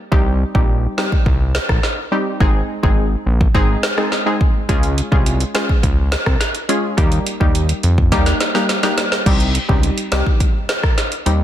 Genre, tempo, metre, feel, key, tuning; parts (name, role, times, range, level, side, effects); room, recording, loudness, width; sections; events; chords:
dancehall; 105 BPM; 4/4; straight; C phrygian; A4 = 440 Hz
glassy wavetable pluck; accompaniment; 0.1-11.4 s; G3 to Ab4; -20 LUFS; equal; chorus, sidechain pumping
fat analog bass; bass; 0.1-11.4 s; Ab1 to F2; -17 LUFS; equal
deep house drum kit; drums; 0.1-11.4 s; crash cymbal, hi-hat, kick drum, rim click, snare drum; -16 LUFS; equal
light reverb, digital ambience; dense, heavily limited modern master; -14 LUFS; side -11 dB against mid
0.0-9.3 A section; 9.3-11.4 B section
drum fill 8.1-9.3
0.1 Cm; 2.4 Ab; 4.7 Db; 7.0 Eb; 9.3 Cm